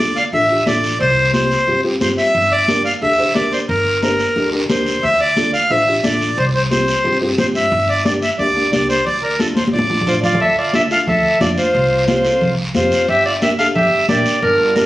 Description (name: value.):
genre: latin, cumbia.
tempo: 179 BPM.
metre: 4/4.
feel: straight.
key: D minor.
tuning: A4 = 440 Hz.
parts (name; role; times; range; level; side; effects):
accordion; second line; 0.0-14.9 s; D4 to F5; -17 LUFS; equal; none.
dark upright piano; accompaniment; 0.0-14.8 s; A3 to C5; -22 LUFS; left 1 dB; none.
upright bass; bass; 0.0-14.9 s; G1 to G2; -24 LUFS; equal; none.
guiro; percussion; 0.0-14.9 s; none; -26 LUFS; right 1 dB; none.
congas; percussion; 0.3-14.9 s; none; -21 LUFS; left 1 dB; none.
clear clarinet; melody; 10.1-14.9 s; Bb4 to F5; -15 LUFS; equal; none.
room: moderate studio reverb, RT60 0.6 s.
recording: recorded on a phone in the room, club reverb.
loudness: -13 LUFS.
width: side -16 dB against mid.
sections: 0.0-10.4 A section; 10.4-14.9 B section.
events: accordion solo 0.0-10.4; drum fill 9.6-10.4.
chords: 0.0 Dmadd9; 1.0 Csus4; 2.3 Gm; 5.0 Dmadd9; 6.4 Csus4; 7.7 Gm; 9.1 Dm; 10.4 Dmadd9; 11.7 Csus4; 13.1 Gm.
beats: 0.33 0.67 | 1.00 1.34 1.68 2.01 | 2.35 2.68 3.02 3.35 | 3.69 4.03 4.36 4.70 | 5.03 5.37 5.71 6.04 | 6.38 6.71 7.05 7.38 | 7.72 8.05 8.39 8.72 | 9.06 9.40 9.73 10.07 | 10.40 10.74 11.07 11.41 | 11.74 12.08 12.41 12.75 | 13.08 13.42 13.76 14.09 | 14.43 14.76.